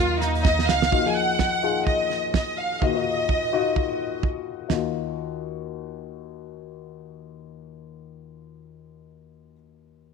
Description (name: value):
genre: piano-driven pop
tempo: 127 BPM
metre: 4/4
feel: swing 56% on 16ths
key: Eb minor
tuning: A4 = 445 Hz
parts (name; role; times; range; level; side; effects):
- warm studio violin section; melody; 0.0-4.2 s; Eb4 to Ab5; -24 LUFS; right 1 dB; none
- dark upright piano; accompaniment; 0.0-10.1 s; Eb2 to Bb4; -28 LUFS; left 12 dB; none
- chorused synth bass; bass; 0.0-0.9 s; Db2 to Eb2; -26 LUFS; right 1 dB; none
- damped 70s drum kit; drums; 0.2-4.8 s; hi-hat, kick drum, snare drum, toms; -23 LUFS; right 4 dB; none
room: light reverb, studio reverb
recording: 1960s-style stereo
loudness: -21 LUFS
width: side -5 dB against mid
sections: 0.9-4.7 A section; 4.7-8.5 B section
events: drum fill 0.4-0.9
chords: 0.0 Ebm; 0.9 Ebmadd9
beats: 0.45 | 0.92 1.39 1.87 2.34 | 2.81 3.29 3.76 4.23 | 4.71 5.18 5.65 6.13 | 6.60 7.07 7.55 8.02